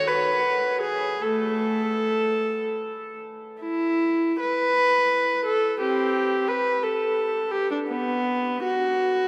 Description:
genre	classical, baroque-style suite movement for unaccompanied viola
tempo	49-59 BPM (dotted quarters)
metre	6/8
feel	rubato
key	unclear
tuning	A4 = 440 Hz
part	warm viola	solo	0.0-9.3 s	A3 to B4	-24 LUFS	equal	none
room	wet cathedral reverb, RT60 5.8 s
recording	none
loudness	-24 LUFS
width	mono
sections	0.0-3.6 A section; 3.6-9.3 A section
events	none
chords	none

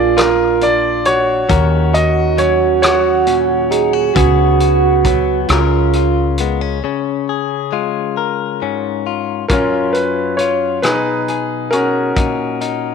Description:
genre	acoustic folk-pop ballad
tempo	45 BPM (dotted quarters)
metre	6/8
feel	straight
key	unclear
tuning	A4 = 441 Hz
part	bright grand piano	melody	0.0-12.9 s	C#4 to D#5	-17 LUFS	left 1 dB	none
part	dark French horn	second line	0.0-6.4 s	E#4 to G#4	-15 LUFS	right 11 dB	none
part	direct-recorded clean electric guitar	accompaniment	0.0-12.9 s	F#2 to A#4	-19 LUFS	left 11 dB	none
part	woody fretless electric bass	bass	0.0-6.8 s	A#1 to D#2	-18 LUFS	equal	none
part	loose indie drum kit	drums	0.2-12.8 s	hi-hat, kick drum, rim click	-19 LUFS	equal	none
room	moderate echo chamber reverb, RT60 2.0 s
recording	1960s-style stereo with parts hard left and right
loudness	-13 LUFS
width	side -6 dB against mid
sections	0.0-6.8 A section; 6.8-9.5 B section; 9.5-12.9 C section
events	none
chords	0.0 A#7; 1.5 D#m7; 4.2 C#7sus4; 5.5 C#6; 9.5 F#5; 10.8 B6; 12.2 D#m7/A#

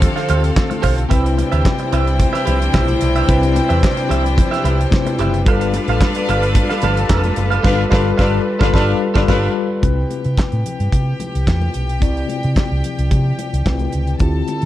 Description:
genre	disco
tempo	110 BPM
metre	4/4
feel	straight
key	C major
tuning	A4 = 445 Hz
part	clear studio string section	second line	0.0-14.7 s	C4 to A5	-23 LUFS	left 2 dB	none
part	clean electric guitar	accompaniment	0.0-9.5 s	G4 to F5	-24 LUFS	right 7 dB	analog chorus
part	mellow tine electric piano	accompaniment	0.0-14.7 s	C3 to G5	-22 LUFS	left 3 dB	medium stereo tremolo
part	clear studio string section	sustained chords	0.0-9.8 s	C3 to B4	-26 LUFS	equal	none
part	fingered electric bass	bass	0.0-14.7 s	F1 to C3	-18 LUFS	equal	none
part	damped 70s drum kit	drums	0.0-14.7 s	crash cymbal, handclaps, hi-hat, kick drum, snare drum	-17 LUFS	equal	none
part	congas	percussion	0.0-14.6 s	none	-29 LUFS	left 5 dB	none
room	studio reverb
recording	dark, warm production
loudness	-14 LUFS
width	side -14 dB against mid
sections	0.0-9.8 A section; 9.8-14.7 B section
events	band accent 7.6-9.8; tine electric piano fill 13.4-14.2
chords	0.0 Dm11; 1.1 Cmaj7; 5.5 G9; 9.8 Cmaj7

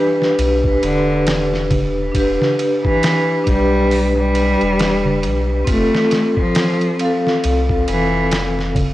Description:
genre	trip hop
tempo	68 BPM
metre	4/4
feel	swing 59% on 16ths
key	E phrygian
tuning	A4 = 441 Hz
part	rich cello	melody	0.0-8.5 s	D3 to A3	-20 LUFS	equal	dub echo
part	vibraphone with medium mallets	accompaniment	0.0-8.9 s	C4 to F5	-18 LUFS	equal	tremolo
part	trip hop sampler-style drum kit	drums	0.2-8.9 s	hi-hat, kick drum, ride cymbal, snare drum	-22 LUFS	equal	none
part	soft dub sub bass	bass	0.4-8.9 s	E1 to C2	-21 LUFS	equal	tube saturation
part	darbuka	percussion	1.3-8.9 s	none	-25 LUFS	right 2 dB	none
room	small room ambience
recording	dry, gritty hardware recording, cassette tape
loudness	-14 LUFS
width	side -15 dB against mid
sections	0.0-8.9 A section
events	none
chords	0.0 Em7; 5.7 F

